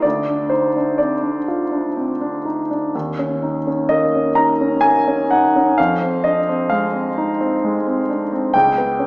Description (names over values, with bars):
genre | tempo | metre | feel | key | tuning
classical, impressionist solo piano | 64 BPM | 3/4 | rubato | unclear | A4 = 440 Hz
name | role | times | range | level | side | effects
warm grand piano | solo | 0.0-9.1 s | Db2 to Bb5 | -15 LUFS | equal | none
room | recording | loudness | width
wet scoring stage reverb, RT60 1.6 s | heard from further back in the room, small speaker sound | -15 LUFS | side -27 dB against mid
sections
0.0-9.1 A section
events
none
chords
0.0 Dm7; 2.9 Eb5; 5.8 Fm7; 8.5 N.C.